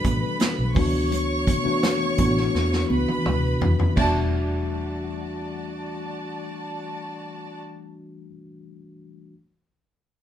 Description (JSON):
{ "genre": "lush 1970s-style soul", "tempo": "84 BPM", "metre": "4/4", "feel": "straight", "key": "E dorian", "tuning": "A4 = 440 Hz", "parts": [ { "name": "warm studio violin section", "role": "second line", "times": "0.0-7.6 s", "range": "F#4 to C#6", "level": "-29 LUFS", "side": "right 2 dB", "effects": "none" }, { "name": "mellow tine electric piano", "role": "accompaniment", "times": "0.0-9.3 s", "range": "E3 to A4", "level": "-28 LUFS", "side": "left 3 dB", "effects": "slow stereo tremolo" }, { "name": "vintage muted fingered electric bass", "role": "bass", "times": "0.0-8.3 s", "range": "E1 to E2", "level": "-26 LUFS", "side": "right 1 dB", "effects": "none" }, { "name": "vintage drum kit", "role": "drums", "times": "0.0-4.1 s", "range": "crash cymbal, hi-hat, kick drum, snare drum, toms", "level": "-25 LUFS", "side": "equal", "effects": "none" }, { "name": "congas", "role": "percussion", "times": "0.0-4.3 s", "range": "none", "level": "-30 LUFS", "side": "right 6 dB", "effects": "none" }, { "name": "celesta", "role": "texture", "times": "0.0-8.3 s", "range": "D5 to E5", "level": "-41 LUFS", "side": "equal", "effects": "none" } ], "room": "moderate studio reverb, RT60 0.6 s", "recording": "band playing live in one room", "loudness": "-21 LUFS", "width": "side -10 dB against mid", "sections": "0.0-4.0 A section; 4.0-6.8 B section", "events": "drum fill 2.5-4.0", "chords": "0.0 Em11; 0.8 D69; 4.0 Em11" }